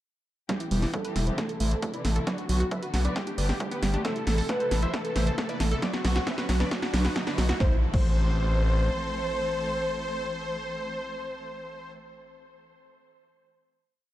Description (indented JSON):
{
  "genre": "uplifting trance",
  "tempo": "135 BPM",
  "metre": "4/4",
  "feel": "straight",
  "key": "A dorian",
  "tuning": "A4 = 440 Hz",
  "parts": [
    { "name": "dense compressed supersaw", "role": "melody", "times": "0.5-11.9 s", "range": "D4 to F#5", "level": "-34 LUFS", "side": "equal", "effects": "sidechain pumping, low-pass filter, digital delay" },
    { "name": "warm velvety synth lead", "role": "second line", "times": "0.5-11.9 s", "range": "G4 to C5", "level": "-35 LUFS", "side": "equal", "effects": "chorus, digital delay" },
    { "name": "dark chamber string section", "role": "sustained chords", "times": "0.5-11.9 s", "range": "C3 to A4", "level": "-36 LUFS", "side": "left 1 dB", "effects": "sidechain pumping" },
    { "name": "analog pluck", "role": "arpeggios", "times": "0.5-8.1 s", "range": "F#3 to C5", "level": "-34 LUFS", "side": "right 3 dB", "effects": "chorus, sidechain pumping, digital delay" },
    { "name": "electronic kick drum", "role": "drums", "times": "0.5-8.1 s", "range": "none", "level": "-30 LUFS", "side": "equal", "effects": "high-pass filter on kick, high-pass filter on room" },
    { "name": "punchy analog drum machine", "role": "drums", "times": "0.5-8.1 s", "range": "crash cymbal, hi-hat, snare drum", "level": "-33 LUFS", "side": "equal", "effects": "none" },
    { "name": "riser and impact", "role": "sound effects", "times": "3.3-12.3 s", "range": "none", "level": "-37 LUFS", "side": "equal", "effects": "none" },
    { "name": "gritty driven synth bass", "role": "bass", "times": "0.7-8.9 s", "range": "E1 to B1", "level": "-26 LUFS", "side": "equal", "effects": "distortion, sidechain pumping" }
  ],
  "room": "digital ambience",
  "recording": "dark, warm production",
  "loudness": "-25 LUFS",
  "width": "side -14 dB against mid",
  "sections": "0.5-7.6 build; 7.6-11.2 final chord",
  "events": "build-up 0.5-7.6; drum fill 0.5-7.6; filter sweep on supersaw synth 0.5-7.6; filter sweep on synth pluck 0.5-7.6",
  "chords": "0.5 Em; 1.4 Am; 2.3 Bm; 3.2 Gadd9; 4.0 Am; 5.8 Bm; 7.6 Am",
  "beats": "| 0.49 0.94 1.38 1.82 | 2.27 2.71 3.16 3.60 | 4.05 4.49 4.94 5.38 | 5.83 6.27 6.71 7.16 | 7.60 8.05 8.49 8.94 | 9.38 9.82 10.27 10.71"
}